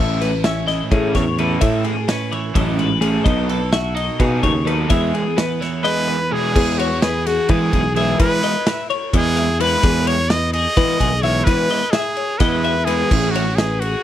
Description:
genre	math rock and midwest emo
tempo	256 BPM (eighths)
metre	7/8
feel	straight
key	E major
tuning	A4 = 440 Hz
part	twelve-string electric guitar	accompaniment	0.0-8.2 s	E2 to A4	-24 LUFS	right 5 dB	none
part	twelve-string electric guitar	arpeggios	0.0-14.0 s	G#4 to E5	-23 LUFS	left 8 dB	analog chorus
part	raw garage guitar	riff	0.0-13.4 s	E3 to A4	-23 LUFS	right 2 dB	overdrive
part	picked electric bass	bass	0.0-13.9 s	A1 to E3	-21 LUFS	equal	none
part	loose indie drum kit	drums	0.2-13.9 s	crash cymbal, kick drum, ride cymbal, snare drum	-22 LUFS	equal	none
part	bright trumpet	melody	5.8-14.0 s	F#4 to D#5	-21 LUFS	right 2 dB	none
room	little or no reverb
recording	none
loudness	-15 LUFS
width	side -11 dB against mid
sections	0.0-6.5 A section; 6.5-14.0 B section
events	none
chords	0.0 Amaj9; 3.3 B7; 4.9 Emaj7; 13.1 Amaj9

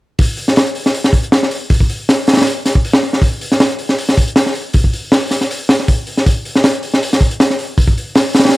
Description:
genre	drum and bass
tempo	158 BPM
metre	4/4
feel	swing 53% on 16ths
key	none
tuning	none
part	crunchy breakbeat drum kit	drums	0.2-8.6 s	hi-hat, kick drum, snare drum	-11 LUFS	equal	none
room	little or no reverb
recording	none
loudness	-12 LUFS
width	side -19 dB against mid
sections	0.2-8.6 A section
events	none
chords	none

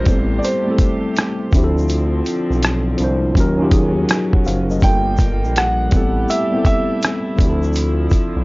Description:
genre	lo-fi hip hop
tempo	82 BPM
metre	4/4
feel	swing 66% on 16ths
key	unclear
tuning	A4 = 439 Hz
part	felt-muted upright piano	melody	0.0-7.3 s	C5 to G5	-23 LUFS	right 2 dB	tape echo
part	tine electric piano	accompaniment	0.0-8.4 s	F3 to Gb5	-20 LUFS	equal	medium stereo tremolo, cassette tape
part	warm studio string section	sustained chords	0.0-8.4 s	C3 to G4	-26 LUFS	equal	none
part	smooth gliding synth bass	bass	0.0-8.4 s	Gb1 to Eb2	-19 LUFS	equal	none
part	dusty soul sampler-style drum kit	drums	0.1-8.3 s	hi-hat, kick drum, rim click	-17 LUFS	equal	none
part	tube shaker	percussion	0.1-8.3 s	none	-41 LUFS	left 1 dB	none
room	light reverb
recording	dry, gritty hardware recording, cassette tape, nothing above 7.5 kHz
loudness	-14 LUFS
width	side -23 dB against mid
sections	0.0-8.4 A section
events	none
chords	0.1 Am7; 1.5 Dm7; 3.4 Ebm7; 4.8 Gm7; 5.9 Am7; 7.4 Dm7

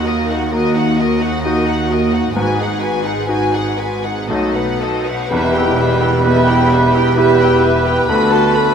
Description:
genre	cinematic, emotional film score for orchestra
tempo	65 BPM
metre	3/4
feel	rubato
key	Eb minor, E minor from 5.3 s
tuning	A4 = 438 Hz
part	warm symphonic violin section	melody	0.0-8.7 s	Eb5 to B5	-22 LUFS	left 4 dB	none
part	warm chamber violin section	second line	0.0-8.7 s	Gb4 to Cb5	-22 LUFS	left 5 dB	none
part	clear grand piano	accompaniment	0.0-8.7 s	B1 to G4	-20 LUFS	right 1 dB	none
part	dark studio viola section	accompaniment	0.0-8.7 s	Eb4 to A4	-23 LUFS	right 3 dB	none
part	dark symphonic double bass section	bass	0.0-8.7 s	E1 to Eb2	-22 LUFS	right 2 dB	none
part	warm symphonic cello section	bass	0.0-8.7 s	D2 to B2	-21 LUFS	right 2 dB	none
part	cymbal swell and tam-tam	percussion	2.4-8.7 s	none	-26 LUFS	left 2 dB	none
part	clear clarinet	second line	5.3-8.7 s	F#4 to G4	-23 LUFS	right 3 dB	none
part	silver concert flute	second line	5.3-8.7 s	A5 to B5	-20 LUFS	equal	none
part	warm cor anglais	second line	5.3-8.7 s	B4	-20 LUFS	right 2 dB	none
part	warm French horn section	sustained chords	5.3-8.7 s	B3 to A4	-19 LUFS	left 1 dB	none
room	wet scoring stage reverb, RT60 2.1 s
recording	none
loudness	-13 LUFS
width	side -7 dB against mid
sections	0.0-5.3 A section; 5.3-8.7 A section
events	band accent 5.3-6.3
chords	0.0 Ebm; 2.4 Abm7; 4.3 B7; 5.3 Em; 8.1 Bm7/D

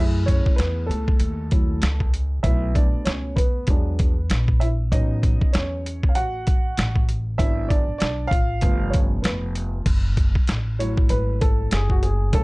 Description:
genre	hip hop, jazz-hop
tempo	97 BPM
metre	4/4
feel	swing 61% on 16ths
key	unclear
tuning	A4 = 440 Hz
part	dark baby grand piano	accompaniment	0.0-12.4 s	B2 to F#5	-27 LUFS	right 1 dB	none
part	upright bass	bass	0.0-12.4 s	F1 to F#2	-24 LUFS	equal	none
part	boom bap sampler-style drum kit	drums	0.3-12.4 s	crash cymbal, hi-hat, kick drum, snare drum	-20 LUFS	equal	none
room	little or no reverb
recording	dark, warm production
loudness	-19 LUFS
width	side -23 dB against mid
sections	0.0-9.9 A section; 9.9-12.4 B section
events	grand piano solo 0.0-9.9, 9.9-12.4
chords	0.0 F#m7; 2.4 Bm7; 3.7 E7; 4.9 A6; 7.4 G#m7b5; 8.6 G9; 9.9 F#m7

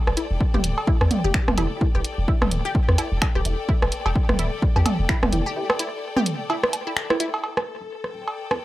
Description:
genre	minimal techno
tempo	128 BPM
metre	4/4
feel	swing 58% on 16ths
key	E minor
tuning	A4 = 441 Hz
part	bright studio string section	texture	0.0-8.6 s	A4 to G5	-33 LUFS	left 5 dB	sidechain pumping
part	punchy sub bass	bass	0.1-8.6 s	D1 to E2	-23 LUFS	equal	sidechain pumping, high-pass filter
part	techno drum kit	percussion	0.1-8.6 s	cowbell, rim click, toms, woodblock	-24 LUFS	right 1 dB	tape echo
part	resonant blip pluck	riff	0.2-7.3 s	E4 to G4	-31 LUFS	equal	phaser, analog chorus, cassette tape, sidechain pumping, tape echo
part	punchy analog drum machine	drums	0.2-8.5 s	finger snaps, hi-hat, shaker	-26 LUFS	equal	low-pass filter on hats, low-pass filter on snare, low-pass filter on perc, low-pass filter on room
part	electronic kick drum	drums	0.4-5.2 s	none	-22 LUFS	equal	none
part	filtered dub chord stab	stabs	1.6-5.6 s	B3 to G4	-32 LUFS	equal	ensemble chorus, tape echo
room	little or no reverb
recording	dry, gritty hardware recording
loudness	-20 LUFS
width	side -16 dB against mid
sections	0.0-7.4 A section; 7.4-8.6 B section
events	break 5.6-7.4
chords	0.0 Em

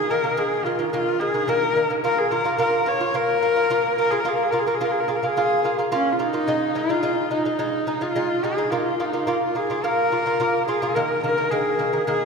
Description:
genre	mongolian traditional, Mongolian folk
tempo	108 BPM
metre	4/4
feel	straight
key	unclear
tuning	A4 = 439 Hz
part	bright horsehead fiddle	melody	0.0-12.2 s	Db4 to Db5	-22 LUFS	left 2 dB	none
part	lute	arpeggios	0.0-12.2 s	Eb3 to F4	-24 LUFS	right 2 dB	none
room	wet church reverb, RT60 3.9 s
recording	recorded in a church or concert hall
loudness	-20 LUFS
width	side -5 dB against mid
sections	0.0-11.0 A section; 11.0-12.2 B section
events	none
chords	0.0 Eb5; 2.0 Bb5; 6.5 Ab5; 8.7 Bb5; 11.0 Eb5

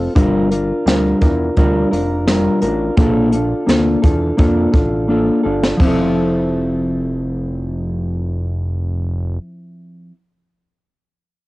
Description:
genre	indie pop, bedroom pop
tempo	85 BPM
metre	4/4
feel	straight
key	F major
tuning	A4 = 440 Hz
part	mellow electric guitar	accompaniment	0.0-10.2 s	F3 to Bb4	-17 LUFS	equal	wide subtle chorus, warbly pitch drift, cassette tape
part	fat analog bass	bass	0.0-9.4 s	F1 to F2	-21 LUFS	equal	transformer saturation
part	jazz brush drum kit	drums	0.2-6.0 s	crash cymbal, hi-hat, kick drum, snare drum	-17 LUFS	equal	vintage 12-bit sampler grit, cassette tape
room	light reverb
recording	home recording on cassette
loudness	-14 LUFS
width	side -19 dB against mid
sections	0.0-5.8 A section; 5.8-8.6 B section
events	drum fill 5.1-5.8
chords	0.2 Gm7; 3.0 Bbmaj7; 5.8 Fmaj7

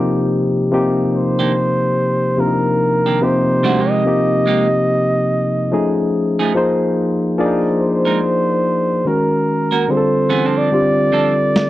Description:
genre	R&B, neo-soul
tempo	72 BPM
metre	4/4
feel	swing 60% on 16ths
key	C minor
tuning	A4 = 440 Hz
part	barky tine electric piano	accompaniment	0.0-11.7 s	C3 to D5	-16 LUFS	left 1 dB	overdrive, wide subtle chorus
part	breathy flugelhorn	melody	1.1-11.7 s	Bb4 to Eb5	-18 LUFS	right 1 dB	none
part	semi-hollow electric guitar	second line	1.4-11.3 s	Eb3 to Bb4	-19 LUFS	right 6 dB	none
part	electronic snare drum	drums	11.6-11.7 s	none	-16 LUFS	equal	none
room	light reverb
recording	dry, close 1970s-style studio recording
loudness	-14 LUFS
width	side -15 dB against mid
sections	0.0-11.7 A section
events	none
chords	0.0 Cm9; 3.2 Fm11; 5.7 F7alt; 6.5 Bb9sus4; 9.0 Ebm7; 9.9 Dm7

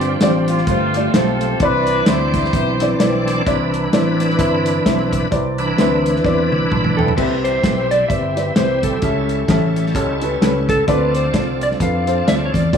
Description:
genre	uptempo gospel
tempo	129 BPM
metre	4/4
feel	swing 58% on 8ths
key	C major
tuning	A4 = 439 Hz
part	warm upright piano	accompaniment	0.0-12.8 s	G2 to C6	-20 LUFS	equal	none
part	bright tonewheel organ	sustained chords	0.0-12.8 s	E3 to D5	-22 LUFS	right 1 dB	slow rotary speaker, overdrive, chorus vibrato
part	fingered electric bass	bass	0.0-12.8 s	G1 to F2	-21 LUFS	equal	none
part	warm soul drum kit	drums	0.0-12.8 s	crash cymbal, hi-hat, kick drum, snare drum, toms	-20 LUFS	equal	none
part	warm horn section	melody	0.5-3.3 s	A3 to C5	-20 LUFS	left 1 dB	none
part	clean lap steel guitar	melody	7.0-12.8 s	A4 to F5	-20 LUFS	equal	none
room	light reverb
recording	studio reverb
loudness	-14 LUFS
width	side -7 dB against mid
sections	0.0-3.5 A section; 3.5-7.2 B section; 7.2-12.8 C section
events	tonewheel organ solo 3.5-7.2; drum fill 6.2-7.2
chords	0.0 G7sus4; 0.7 G9sus4; 1.6 Cmaj9; 7.2 Cmaj7; 9.0 A7; 10.9 Dm7

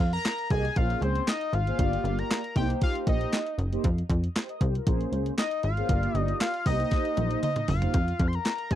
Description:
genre	early-eighties boogie funk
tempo	117 BPM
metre	4/4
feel	straight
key	F minor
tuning	A4 = 440 Hz
part	fat analog lead	melody	0.0-8.8 s	C5 to C6	-31 LUFS	left 2 dB	phaser
part	plucky analog bass	bass	0.0-8.8 s	Gb1 to F2	-28 LUFS	equal	none
part	clean 12-bit digital drum machine	drums	0.1-8.8 s	handclaps, hi-hat, kick drum, snare drum, toms	-28 LUFS	equal	overdrive
part	mellow synth brass	accompaniment	0.5-8.8 s	Ab3 to Eb5	-32 LUFS	right 1 dB	chorus
room	little or no reverb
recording	dry, close 1970s-style studio recording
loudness	-24 LUFS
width	side -12 dB against mid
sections	0.0-8.8 A section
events	drum fill 6.9-7.9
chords	0.0 Fm11; 0.8 Bbm9; 1.8 Gm7; 2.6 Cm7; 3.8 F5; 4.9 Bbm9; 5.9 Gm7; 6.7 Cm7; 7.9 Fsus4

